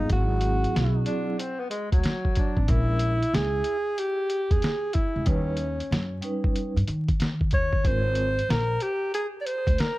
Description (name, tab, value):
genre	hip hop, jazz-hop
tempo	93 BPM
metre	4/4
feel	swing 65% on 16ths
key	unclear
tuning	A4 = 439 Hz
part	warm alto saxophone	melody	0.0-10.0 s	C#4 to D5	-28 LUFS	equal	plate reverb, tape echo
part	vibraphone with soft mallets	accompaniment	0.0-8.3 s	F#3 to B4	-31 LUFS	right 2 dB	plate reverb
part	upright bass	bass	0.0-9.8 s	G#1 to D#3	-26 LUFS	equal	none
part	lo-fi sampler-style drum kit	drums	0.1-10.0 s	hi-hat, kick drum, snare drum	-25 LUFS	equal	none
part	breathy tenor saxophone	second line	1.1-2.6 s	F#3 to D4	-31 LUFS	left 1 dB	none
room	light reverb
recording	dark, warm production, vinyl crackle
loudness	-23 LUFS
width	side -18 dB against mid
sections	0.0-10.0 A section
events	none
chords	0.1 G#7b13; 2.7 A#m7b5; 5.3 D#7b13; 7.8 G#69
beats	| 0.10 0.75 1.39 2.04 | 2.68 3.33 3.97 4.62 | 5.26 5.91 6.55 7.20 | 7.84 8.49 9.13 9.78